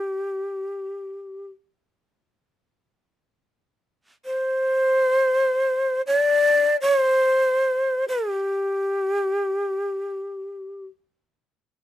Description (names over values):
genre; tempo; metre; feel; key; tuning
japanese traditional, Japanese chamber music; free time; none; none; unclear; A4 = 440 Hz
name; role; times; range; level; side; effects
breathy shakuhachi; solo; 0.0-10.9 s; G4 to D5; -20 LUFS; equal; none
room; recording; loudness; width
little or no reverb; close, detailed microphones; -20 LUFS; side -14 dB against mid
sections
0.0-11.3 A section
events
none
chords
none